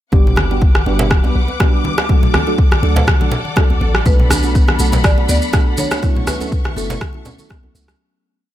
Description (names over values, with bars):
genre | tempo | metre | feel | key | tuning
afro house | 122 BPM | 4/4 | swing 54% on 16ths | unclear | A4 = 440 Hz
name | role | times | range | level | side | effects
dark studio string section | sustained chords | 0.1-8.0 s | A4 to D6 | -26 LUFS | left 3 dB | sidechain pumping
deep mellow chord stab | stabs | 0.1-8.0 s | F#3 to A4 | -23 LUFS | right 2 dB | chorus, phaser, sidechain pumping, ping-pong delay
warm 808-style bass | bass | 0.1-7.9 s | D1 to D2 | -18 LUFS | equal | sidechain pumping
electronic kick drum | drums | 0.1-7.6 s | none | -14 LUFS | equal | none
congas | percussion | 0.1-7.6 s | none | -25 LUFS | left 2 dB | none
djembe | percussion | 0.1-8.0 s | none | -25 LUFS | right 2 dB | none
electronic rim click | drums | 0.4-8.0 s | none | -21 LUFS | right 1 dB | none
marimba with medium hard mallets | melody | 4.1-7.7 s | A4 to D5 | -26 LUFS | equal | none
kalimba | arpeggios | 4.1-8.0 s | F#3 to D4 | -25 LUFS | equal | sidechain pumping, ping-pong delay
maracas | percussion | 4.1-8.0 s | none | -26 LUFS | right 3 dB | none
room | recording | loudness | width
little or no reverb | none | -12 LUFS | side -13 dB against mid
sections
0.1-8.0 groove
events
fade-out 5.4-8.0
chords
0.1 Gmaj7; 2.1 D; 4.1 Bm7; 6.0 F#m7